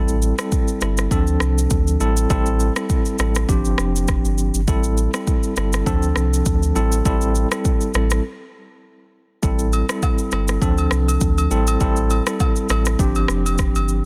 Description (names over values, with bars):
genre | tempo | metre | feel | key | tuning
afrobeats | 101 BPM | 4/4 | swing 55% on 16ths | A minor | A4 = 440 Hz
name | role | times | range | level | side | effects
tine electric piano | accompaniment | 0.0-14.1 s | F3 to A4 | -25 LUFS | equal | fast tremolo
sub bass with octave | bass | 0.0-14.0 s | F1 to D2 | -22 LUFS | equal | none
afro-pop drum kit | drums | 0.1-14.0 s | kick drum, rim click, shaker | -24 LUFS | equal | soft clipping on snare
agogo bells and woodblock | percussion | 9.7-13.9 s | none | -31 LUFS | equal | none
room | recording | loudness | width
digital ambience | dense, heavily limited modern master | -19 LUFS | mono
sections
0.0-14.1 A section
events
break 8.2-9.4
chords
0.0 Am7; 1.1 Dm7; 2.0 Am7; 3.5 G7sus4; 4.7 Am7; 5.9 Dm7; 6.8 Am7; 8.2 N.C.; 9.4 Am7; 10.6 Dm7; 11.5 Am7; 13.0 G7sus4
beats
0.52 1.11 1.71 | 2.30 2.90 3.49 4.08 | 4.68 5.27 5.87 6.46 | 7.05 7.65 8.24 8.84 | 9.43 10.03 10.62 11.21 | 11.81 12.40 12.99 13.59